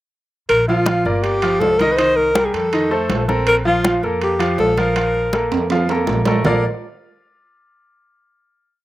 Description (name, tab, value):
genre	Afro-Cuban jazz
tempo	161 BPM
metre	4/4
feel	straight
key	unclear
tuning	A4 = 440 Hz
part	breathy alto saxophone	melody	0.5-5.5 s	F4 to C5	-17 LUFS	left 1 dB	none
part	upright bass	bass	0.5-6.6 s	G1 to F2	-24 LUFS	equal	none
part	congas	percussion	0.5-6.5 s	none	-24 LUFS	left 2 dB	none
part	timbales	percussion	0.5-6.5 s	none	-25 LUFS	right 5 dB	slapback echo
part	clear grand piano	accompaniment	0.7-6.6 s	Eb3 to F5	-20 LUFS	right 1 dB	none
room	little or no reverb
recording	recorded outdoors, with no room sound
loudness	-15 LUFS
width	side -15 dB against mid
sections	0.5-6.5 A section; 6.5-7.9 final chord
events	drum fill 5.5-6.5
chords	0.5 Bb; 1.2 Gm7; 2.0 Cm7; 2.7 F7; 3.5 Bb5; 6.5 Bbmaj7